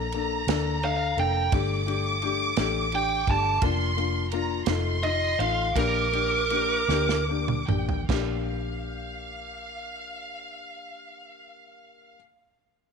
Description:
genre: six-eight pop ballad.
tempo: 48-58 BPM (dotted quarters).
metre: 6/8.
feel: straight.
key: Bb major.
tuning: A4 = 440 Hz.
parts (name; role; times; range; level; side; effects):
rich studio violin section; second line; 0.0-12.1 s; F5 to D6; -31 LUFS; equal; none.
felt-muted upright piano; accompaniment; 0.0-12.2 s; A3 to A4; -31 LUFS; left 14 dB; none.
vintage muted fingered electric bass; bass; 0.0-12.1 s; F1 to D2; -30 LUFS; right 1 dB; none.
natural country drum kit; drums; 0.1-8.3 s; china cymbal, kick drum, ride cymbal, snare drum, toms; -30 LUFS; right 4 dB; none.
biting lead guitar; melody; 0.8-7.2 s; Bb4 to A5; -27 LUFS; right 4 dB; overdrive, slapback echo.
room: light reverb, small room ambience.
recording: 1960s-style stereo.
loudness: -23 LUFS.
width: side -5 dB against mid.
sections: 0.0-8.1 A section; 8.1-12.9 B section.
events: slowing down 3.6-8.1; drum fill 6.9-8.1.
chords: 0.0 Bbmaj7; 1.5 Gsus2; 3.6 Bb/F; 4.7 F7; 5.7 Bb6.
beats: 0.48 | 1.53 2.58 | 3.62 4.67 | 5.75 6.88 | 8.08 9.32 | 10.55 11.79.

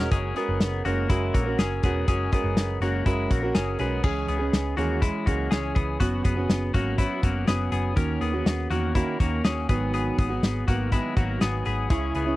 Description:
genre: jangly indie pop.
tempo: 122 BPM.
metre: 4/4.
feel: straight.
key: unclear.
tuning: A4 = 440 Hz.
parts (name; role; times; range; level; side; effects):
fingerpicked plugged-in steel-string acoustic guitar; accompaniment; 0.0-12.4 s; G#2 to A#4; -28 LUFS; right 3 dB; none.
warm analog keys; accompaniment; 0.0-0.1, 11.9-12.4 s; E4 to G#5; -34 LUFS; right 2 dB; chorus.
twelve-string electric guitar; arpeggios; 0.0-12.4 s; G#3 to A#4; -30 LUFS; left 5 dB; spring reverb.
vintage muted picked electric bass; bass; 0.0-12.4 s; E1 to E2; -28 LUFS; equal; none.
loose indie drum kit; drums; 0.1-12.3 s; crash cymbal, hi-hat, kick drum, snare drum; -24 LUFS; equal; none.
room: little or no reverb.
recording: dry, close 1970s-style studio recording.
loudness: -22 LUFS.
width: side -17 dB against mid.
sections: 0.1-4.0 A section; 4.0-12.4 B section.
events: none.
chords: 0.1 F#add9; 4.0 C#m; 6.0 F#sus4; 8.0 D#m7; 9.7 G#m7.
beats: | 0.11 0.60 1.09 1.58 | 2.08 2.57 3.06 3.55 | 4.04 4.53 5.02 5.51 | 6.01 6.50 6.99 7.48 | 7.97 8.46 8.95 9.44 | 9.94 10.43 10.92 11.41 | 11.90.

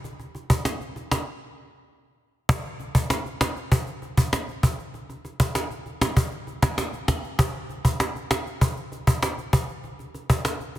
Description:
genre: dancehall.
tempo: 98 BPM.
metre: 4/4.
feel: straight.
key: none.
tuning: none.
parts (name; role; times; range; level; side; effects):
cajon; drums; 0.0-10.8 s; none; -23 LUFS; equal; none.
room: light reverb, small room ambience.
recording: dense, heavily limited modern master.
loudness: -23 LUFS.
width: side -14 dB against mid.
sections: 0.0-2.5 A section; 2.5-10.8 B section.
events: break 1.3-2.5.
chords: none.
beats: | 0.04 0.65 1.27 1.88 | 2.49 3.10 3.72 4.33 | 4.94 5.55 6.17 6.78 | 7.39 8.00 8.61 9.23 | 9.84 10.45.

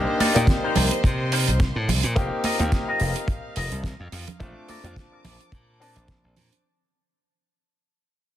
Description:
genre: nu-disco, nu disco.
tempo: 107 BPM.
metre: 4/4.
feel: swing 56% on 16ths.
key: unclear.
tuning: A4 = 439 Hz.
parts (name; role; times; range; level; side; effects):
bright grand piano; accompaniment; 0.0-6.6 s; A3 to A5; -27 LUFS; left 2 dB; sidechain pumping, dub echo.
rich studio violin section; sustained chords; 0.0-6.6 s; C5 to D6; -35 LUFS; equal; vintage 12-bit sampler grit, sidechain pumping.
glassy slap bass; bass; 0.0-6.5 s; F1 to C3; -24 LUFS; equal; none.
electric guitar with an envelope filter; riff; 0.2-6.6 s; Eb4 to Eb5; -29 LUFS; left 4 dB; lush chorus, low-pass filter, dub echo.
damped 70s drum kit; drums; 0.2-6.6 s; hi-hat, snare drum; -28 LUFS; right 4 dB; studio reverb.
congas; percussion; 0.2-6.5 s; none; -30 LUFS; right 3 dB; none.
kick drum; drums; 0.5-6.2 s; none; -22 LUFS; equal; studio reverb.
room: light reverb, small room ambience.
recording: dense, heavily limited modern master.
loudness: -20 LUFS.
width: side -12 dB against mid.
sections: 0.0-6.6 A section.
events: fade-out 0.0-6.6.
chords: 0.0 Cm7; 2.2 F7sus4; 4.4 Bbmaj7.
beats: 0.48 1.04 1.60 | 2.16 2.72 3.28 3.84 | 4.40 4.96 5.53 6.09.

